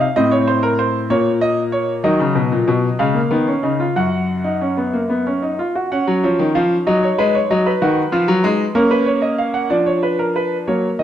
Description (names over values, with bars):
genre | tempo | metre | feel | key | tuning
classical, baroque-style 3-part fugue for grand piano | 63 BPM (dotted quarters) | 6/8 | straight | F# major | A4 = 440 Hz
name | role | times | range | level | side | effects
clear concert grand piano | solo | 0.0-11.0 s | F#2 to F#5 | -15 LUFS | equal | none
room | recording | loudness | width
moderate recital hall reverb, RT60 1.5 s | close, detailed microphones | -15 LUFS | side -10 dB against mid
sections
0.0-5.9 A section; 5.9-9.7 B section; 9.7-11.0 A section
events
none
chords
0.2 Adim; 1.1 Bbm; 2.0 D#m; 3.0 C#7; 4.0 F#5; 6.9 D#m/F#; 7.8 B/D#; 8.8 F#/A#; 9.7 C#13b9/E#